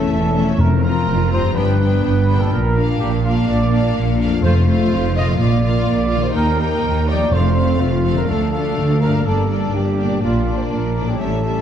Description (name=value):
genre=cinematic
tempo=125 BPM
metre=4/4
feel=straight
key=unclear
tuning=A4 = 440 Hz
part: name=rich studio violin section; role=melody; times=0.0-11.6 s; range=D5 to Bb5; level=-30 LUFS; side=left 6 dB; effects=none
part: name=warm symphonic violin section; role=second line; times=0.0-11.6 s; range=C4 to F4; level=-26 LUFS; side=left 4 dB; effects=none
part: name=clear symphonic viola section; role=accompaniment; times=0.0-11.6 s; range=G3 to C4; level=-24 LUFS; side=equal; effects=none
part: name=concert harp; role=arpeggios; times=0.0-11.6 s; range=F2 to F5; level=-25 LUFS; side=left 9 dB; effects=none
part: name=mellow trumpet section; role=stabs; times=0.0-11.6 s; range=F4 to Eb5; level=-23 LUFS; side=right 1 dB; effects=none
part: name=rich symphonic cello section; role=bass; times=0.0-11.6 s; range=D2 to Bb2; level=-21 LUFS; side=right 1 dB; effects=none
part: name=rich symphonic double bass section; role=bass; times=0.0-11.6 s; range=E1 to Eb2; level=-20 LUFS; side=right 3 dB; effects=none
part: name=timpani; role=percussion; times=0.6-1.3, 4.4-8.0 s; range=F2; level=-22 LUFS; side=left 2 dB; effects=none
room=moderate concert hall reverb, RT60 2.0 s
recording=dark, warm production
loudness=-15 LUFS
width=side -9 dB against mid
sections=0.0-11.6 A section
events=none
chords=0.0 A/E; 0.6 Fsus4; 1.6 G; 2.5 Bb; 4.4 F; 5.4 Bb; 6.3 Eb; 7.3 F; 8.3 Dm; 9.2 Gm; 10.2 Bb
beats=0.11 | 0.59 1.07 1.55 2.03 | 2.51 2.99 3.47 3.95 | 4.43 4.91 5.39 5.87 | 6.35 6.83 7.31 7.79 | 8.28 8.76 9.24 9.73 | 10.21 10.70 11.19